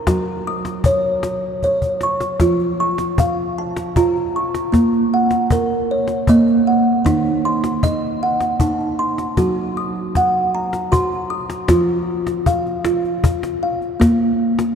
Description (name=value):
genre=world meditative, meditative tuned percussion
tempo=52 BPM (dotted quarters)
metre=6/8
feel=straight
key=F phrygian dominant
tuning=A4 = 438 Hz
part: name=kalimba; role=arpeggios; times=0.0-14.8 s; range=Eb3 to Eb6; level=-16 LUFS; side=right 1 dB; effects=none
part: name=cajon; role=percussion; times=0.1-14.8 s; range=none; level=-22 LUFS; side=left 2 dB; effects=none
room=wet cathedral reverb, RT60 4.9 s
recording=dark, warm production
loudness=-16 LUFS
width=side -7 dB against mid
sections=0.0-2.4 A section; 2.4-11.7 B section; 11.7-14.8 C section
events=drum fill 1.6-2.4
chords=0.1 Gb; 2.4 F; 4.7 Bbm; 7.1 Ebm; 9.4 Gb; 11.7 F5; 14.0 Bb5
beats=| 0.08 1.24 | 2.40 3.57 | 4.73 5.89 | 7.05 8.21 | 9.37 10.53 | 11.69 12.85 | 14.01